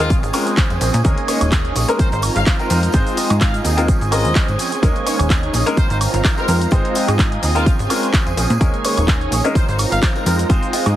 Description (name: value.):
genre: filtered disco house.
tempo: 127 BPM.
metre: 4/4.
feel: swing 55% on 16ths.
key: unclear.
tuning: A4 = 439 Hz.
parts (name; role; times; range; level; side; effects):
clear trumpet section; melody; 0.0-10.1 s; F4 to F5; -26 LUFS; left 1 dB; sidechain pumping, dub echo.
bright grand piano; accompaniment; 0.0-10.9 s; Ab3 to Eb5; -22 LUFS; left 2 dB; phaser, sidechain pumping.
string machine, full ensemble; sustained chords; 0.0-11.0 s; Eb4 to Bb5; -26 LUFS; equal; ensemble chorus, sidechain pumping.
electric guitar with an envelope filter; riff; 0.0-11.0 s; F3 to Bb4; -25 LUFS; right 6 dB; spring reverb, sidechain pumping.
plucky analog bass; bass; 0.0-11.0 s; Eb1 to Bb2; -19 LUFS; equal; tube saturation, sidechain pumping.
punchy analog drum machine; drums; 0.0-10.9 s; cabasa, handclaps, hi-hat, woodblock; -24 LUFS; equal; none.
tambourine; percussion; 0.0-10.9 s; none; -34 LUFS; left 3 dB; sidechain pumping on perc.
electronic kick drum; drums; 0.1-10.6 s; none; -16 LUFS; equal; none.
room: digital ambience.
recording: heavily compressed radio sound, multiband compression.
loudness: -14 LUFS.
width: side -13 dB against mid.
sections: 0.0-11.0 A section.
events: none.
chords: 0.1 Bbm9; 1.0 Eb7sus4; 2.0 Ab69; 3.9 Bbm9; 4.8 Eb7sus4; 5.8 Ab69; 7.7 Bbm9; 8.6 Eb7sus4; 9.6 Ab69.